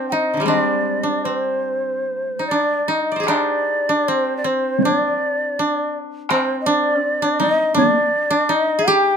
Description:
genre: japanese traditional, Japanese chamber music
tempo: 70-84 BPM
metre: 4/4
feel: rubato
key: C hirajoshi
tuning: A4 = 443 Hz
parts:
  - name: breathy mellow shakuhachi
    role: melody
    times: 0.0-9.2 s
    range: C5 to G5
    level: -20 LUFS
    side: left 1 dB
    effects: none
  - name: koto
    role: second line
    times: 0.0-9.2 s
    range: D3 to D5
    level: -20 LUFS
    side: right 1 dB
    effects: none
  - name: taiko ensemble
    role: percussion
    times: 3.3-7.9 s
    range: none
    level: -21 LUFS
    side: right 1 dB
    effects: none
room: light reverb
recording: close, detailed microphones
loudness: -17 LUFS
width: side -6 dB against mid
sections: 0.0-3.3 A section; 3.3-9.2 B section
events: none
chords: none

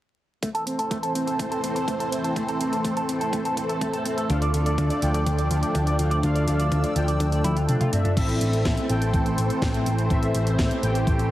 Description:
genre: italo disco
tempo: 124 BPM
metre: 4/4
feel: straight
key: A minor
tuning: A4 = 440 Hz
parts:
  - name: lush unison pad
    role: sustained chords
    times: 0.4-11.3 s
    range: E3 to E6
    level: -27 LUFS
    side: equal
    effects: chorus, phaser
  - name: electric guitar with an envelope filter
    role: arpeggios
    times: 0.4-8.1 s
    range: A3 to D5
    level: -29 LUFS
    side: right 1 dB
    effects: analog chorus, low-pass filter, digital delay
  - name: electronic kick drum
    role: drums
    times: 0.4-11.2 s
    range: none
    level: -27 LUFS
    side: equal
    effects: high-pass filter on kick, high-pass filter on room
  - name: house drum kit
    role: drums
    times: 0.4-11.3 s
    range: crash cymbal, hi-hat, snare drum, toms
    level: -30 LUFS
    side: equal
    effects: none
  - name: analog synth brass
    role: stabs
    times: 4.3-11.3 s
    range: C4 to G5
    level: -28 LUFS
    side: left 1 dB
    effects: chorus, digital delay
  - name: hollow-body short-scale picked electric bass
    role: bass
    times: 4.3-11.3 s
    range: A1 to D2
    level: -24 LUFS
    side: equal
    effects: none
room: moderate lush hall reverb, RT60 2.0 s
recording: heavily compressed radio sound, vinyl crackle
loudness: -21 LUFS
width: side -14 dB against mid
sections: 0.4-8.2 A section; 8.2-11.3 B section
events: filter sweep on clean electric guitar 0.4-8.2; drum fill 7.4-8.2; kick drops out 7.7-8.2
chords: 0.4 Am; 4.3 Dm; 8.2 Am

